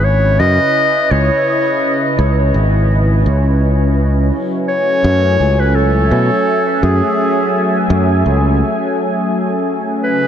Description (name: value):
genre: ambient dub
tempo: 84 BPM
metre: 4/4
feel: swing 56% on 16ths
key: unclear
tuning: A4 = 439 Hz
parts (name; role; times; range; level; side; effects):
- mellow clarinet; melody; 0.0-10.3 s; G#4 to D#5; -16 LUFS; equal; dub echo
- warm analog pad; sustained chords; 0.0-10.3 s; C#3 to G#5; -17 LUFS; equal; chorus
- modern bright fingered electric bass; bass; 0.0-8.6 s; G#1 to B2; -13 LUFS; equal; none
room: moderate huge ambient reverb, RT60 7.6 s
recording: none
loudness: -12 LUFS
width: side -9 dB against mid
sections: 0.0-10.0 A section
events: break 8.6-10.0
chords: 0.0 C#m7; 4.3 F#m7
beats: 0.04 0.76 | 1.47 2.19 2.90 3.62 | 4.33 5.04 5.76 6.47 | 7.19 7.90 8.62 9.33 | 10.04